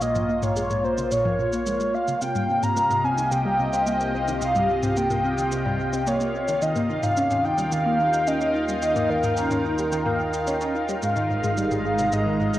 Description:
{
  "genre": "ambient, sequencer-driven space music",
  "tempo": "109 BPM",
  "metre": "4/4",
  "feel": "straight",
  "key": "unclear",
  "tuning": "A4 = 443 Hz",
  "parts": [
    { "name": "breathy flute-like synth lead", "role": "melody", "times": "0.0-12.6 s", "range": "Bb4 to Bb5", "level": "-24 LUFS", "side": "equal", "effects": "analog chorus, cassette tape, tape echo" },
    { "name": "phased analog pad", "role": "sustained chords", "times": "0.0-12.6 s", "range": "C3 to Bb5", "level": "-28 LUFS", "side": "equal", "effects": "phaser, chorus, cassette tape" },
    { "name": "tight sequenced synth", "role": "riff", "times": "0.0-12.6 s", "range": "Ab2 to Eb4", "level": "-28 LUFS", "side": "equal", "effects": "chorus, cassette tape, tape echo" },
    { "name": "analog drone", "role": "bass", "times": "0.0-12.6 s", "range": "Ab1 to Eb2", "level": "-33 LUFS", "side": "equal", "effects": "chorus, tube saturation" },
    { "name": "electronic shaker and toms", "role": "percussion", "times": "0.0-12.6 s", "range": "none", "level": "-31 LUFS", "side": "left 1 dB", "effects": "cassette tape" },
    { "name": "bubbling stepped-filter texture", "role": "texture", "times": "0.0-12.6 s", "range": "F4 to F5", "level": "-33 LUFS", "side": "equal", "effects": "chorus, built-in reverb, cassette tape" }
  ],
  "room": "wet spring reverb, RT60 1.6 s",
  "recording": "home recording on cassette",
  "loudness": "-21 LUFS",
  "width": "side -14 dB against mid",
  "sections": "0.0-12.6 A section",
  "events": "filter sweep on synth arpeggio sound 0.0-12.6",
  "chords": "0.0 Bbm; 2.2 Cm7; 6.6 Eb; 11.0 Absus2"
}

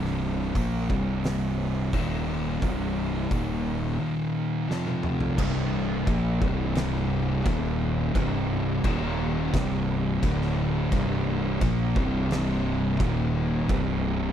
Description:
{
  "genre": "stoner and doom metal",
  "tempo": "87 BPM",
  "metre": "4/4",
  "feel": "straight",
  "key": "C minor",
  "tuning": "A4 = 438 Hz",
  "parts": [
    { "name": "thick fuzz guitar", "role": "riff", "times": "0.0-14.3 s", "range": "C2 to Bb3", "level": "-29 LUFS", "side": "left 8 dB", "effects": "distortion" },
    { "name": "thick fuzz guitar", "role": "riff", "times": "0.0-14.3 s", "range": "C2 to Bb3", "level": "-29 LUFS", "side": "right 8 dB", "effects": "distortion" },
    { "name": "fuzz fingered electric bass", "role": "bass", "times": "0.0-14.3 s", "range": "C1 to Bb1", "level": "-30 LUFS", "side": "equal", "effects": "overdrive" },
    { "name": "oversized low-tuned drum kit", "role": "drums", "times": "0.1-13.9 s", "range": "crash cymbal, hi-hat, kick drum, snare drum, toms", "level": "-31 LUFS", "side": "equal", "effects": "none" }
  ],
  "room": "little or no reverb",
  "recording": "none",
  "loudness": "-24 LUFS",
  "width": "side -9 dB against mid",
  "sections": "0.0-5.4 A section; 5.4-14.3 B section",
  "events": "drum fill 4.7-5.4",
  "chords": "0.0 C5; 1.9 Eb5; 2.6 C5; 3.3 Eb5; 4.7 F5; 5.4 C5; 7.5 Eb5; 8.2 C5; 8.8 Eb5; 9.5 C5; 10.2 D5; 10.9 C5; 13.0 Eb5; 13.7 C5"
}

